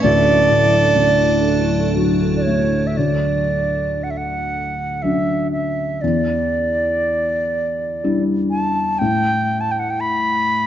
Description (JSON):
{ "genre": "celtic folk, Celtic slow air", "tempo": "60 BPM", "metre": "3/4", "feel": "uneven beats, rubato", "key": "D major", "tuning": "A4 = 438 Hz", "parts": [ { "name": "bright wooden flute", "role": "melody", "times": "0.0-10.7 s", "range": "C#5 to B5", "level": "-19 LUFS", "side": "right 2 dB", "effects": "none" }, { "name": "clear fiddle", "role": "second line", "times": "0.0-1.9 s", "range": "A4", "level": "-26 LUFS", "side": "right 2 dB", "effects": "none" }, { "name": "felt-muted upright piano", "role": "accompaniment", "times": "0.0-10.7 s", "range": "D1 to E4", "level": "-20 LUFS", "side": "left 2 dB", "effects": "none" }, { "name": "icy glass pad", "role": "sustained chords", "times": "0.0-2.9 s", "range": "F#3 to A4", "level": "-24 LUFS", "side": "right 4 dB", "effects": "chorus, built-in reverb" } ], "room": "moderate concert hall reverb, RT60 1.9 s", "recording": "dark, warm production, nothing above 7.8 kHz", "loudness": "-16 LUFS", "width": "side -10 dB against mid", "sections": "0.0-3.0 A section; 3.0-10.7 B section", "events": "none", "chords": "0.0 D; 3.0 Dmaj7; 6.0 Em7; 9.0 A7(no3)" }